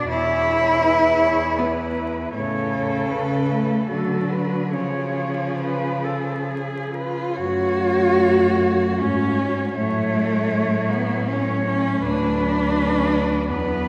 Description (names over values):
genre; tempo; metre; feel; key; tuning
classical, lyrical piece for cello ensemble; 66-85 BPM; 3/4; rubato; F# minor; A4 = 439 Hz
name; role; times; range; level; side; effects
rich cello; melody; 0.0-13.9 s; G#4 to C#5; -30 LUFS; equal; none
rich cello; second line; 0.0-13.9 s; A3 to A4; -26 LUFS; equal; none
rich cello; accompaniment; 0.0-13.9 s; C#3 to E4; -26 LUFS; equal; none
rich cello; bass; 0.0-13.9 s; D2 to D3; -28 LUFS; equal; none
room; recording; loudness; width
wet cathedral reverb, RT60 3.9 s; recorded in a church or concert hall, vinyl crackle; -21 LUFS; mono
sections
0.0-7.4 A section; 7.4-13.9 B section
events
none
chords
0.1 E; 2.4 A; 3.9 D; 4.7 C#; 7.4 F#m; 9.8 F#m/A; 12.0 D6